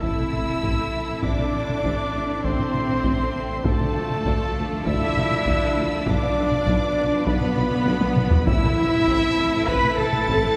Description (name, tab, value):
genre	cinematic, epic orchestral film score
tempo	100 BPM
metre	4/4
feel	straight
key	A minor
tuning	A4 = 440 Hz
part	rich symphonic violin section	melody	0.0-10.6 s	A5 to B6	-36 LUFS	equal	none
part	rich symphonic violin section	second line	0.0-10.6 s	A3 to F4	-37 LUFS	equal	none
part	rich symphonic viola section	accompaniment	0.0-10.6 s	A3 to E5	-31 LUFS	equal	none
part	mellow French horn section	sustained chords	0.0-10.6 s	A3 to B4	-31 LUFS	equal	none
part	rich studio string section	sustained chords	0.0-10.6 s	F3 to E5	-34 LUFS	equal	none
part	mellow trumpet	stabs	0.0-10.6 s	A4 to B5	-31 LUFS	equal	none
part	clear symphonic cello section	bass	0.0-10.6 s	A3 to B4	-32 LUFS	equal	none
part	mellow tuba	bass	0.0-10.3 s	A1 to D2	-33 LUFS	equal	none
part	warm studio double bass section	bass	0.0-10.5 s	A1 to D2	-34 LUFS	equal	none
part	taiko ensemble	drums	0.0-10.6 s	none	-28 LUFS	equal	none
part	impact	sound effects	0.0-1.2 s	none	barely audible	none	none
part	timpani	percussion	8.5-9.3 s	A2	-37 LUFS	equal	none
room	wet cathedral reverb, RT60 4.7 s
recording	recorded in a church or concert hall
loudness	-22 LUFS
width	mono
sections	0.0-10.6 A section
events	impact 0.0-1.2; drum fill 7.9-8.5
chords	0.0 Am; 3.7 Dm; 6.1 Bdim; 8.5 Am